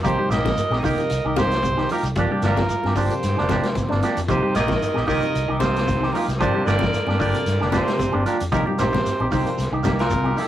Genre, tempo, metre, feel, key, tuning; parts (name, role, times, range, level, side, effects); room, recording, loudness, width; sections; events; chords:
afrobeat; 113 BPM; 4/4; swing 54% on 16ths; C minor; A4 = 440 Hz
barky tine electric piano; accompaniment; 0.0-10.2 s; C3 to Eb4; -30 LUFS; left 2 dB
electric guitar at the edge of break-up; arpeggios; 0.0-10.4 s; C3 to G3; -29 LUFS; left 2 dB
electric guitar with an envelope filter; stabs; 0.0-10.5 s; F3 to G4; -25 LUFS; right 2 dB
fingered electric bass; bass; 0.0-10.3 s; F1 to G2; -25 LUFS; equal
vintage drum kit; drums; 0.0-10.5 s; hi-hat, kick drum, snare drum; -27 LUFS; left 1 dB
shekere; percussion; 0.0-10.5 s; -32 LUFS; right 1 dB
warm trumpet; melody; 0.1-10.5 s; G4 to Eb5; -26 LUFS; right 1 dB
bright alto saxophone; second line; 0.1-10.5 s; D4 to Bb4; -30 LUFS; right 3 dB
congas; percussion; 0.1-10.5 s; -31 LUFS; left 2 dB
raspy baritone saxophone; second line; 4.3-10.5 s; Bb2 to Eb3; -29 LUFS; left 3 dB
wet booth ambience, RT60 0.2 s; rough rehearsal-room recording; -18 LUFS; side -12 dB against mid
0.0-10.5 A section
0.1 Cm7; 2.2 Gm7; 4.3 Cm7; 6.4 Gm7; 8.5 Cm7